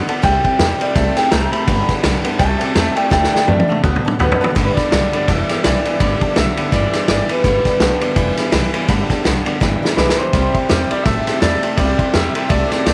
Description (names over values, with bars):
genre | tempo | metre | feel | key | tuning
rockabilly | 166 BPM | 4/4 | swing 59% on 8ths | G major | A4 = 443 Hz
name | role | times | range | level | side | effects
picked steel-string acoustic guitar | accompaniment | 0.0-12.9 s | G2 to A4 | -28 LUFS | equal | none
twangy electric guitar | riff | 0.0-12.9 s | G2 to B3 | -25 LUFS | equal | none
honky-tonk upright piano | accompaniment | 0.1-12.9 s | B4 to D6 | -32 LUFS | equal | none
upright bass | bass | 0.1-12.9 s | F1 to F#2 | -23 LUFS | equal | none
vintage drum kit | drums | 0.1-12.9 s | kick drum, ride cymbal, snare drum, toms | -20 LUFS | equal | none
electric guitar through a small old amp | melody | 0.2-12.9 s | B4 to B5 | -22 LUFS | equal | spring reverb, tape echo
room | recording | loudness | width
little or no reverb | none | -16 LUFS | mono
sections
0.0-4.6 A section; 4.6-12.9 B section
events
clean electric guitar solo 0.0-4.6; drum fill 3.1-4.6, 9.6-10.3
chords
0.2 C; 1.7 G; 2.4 C; 3.1 D; 4.6 G; 10.3 C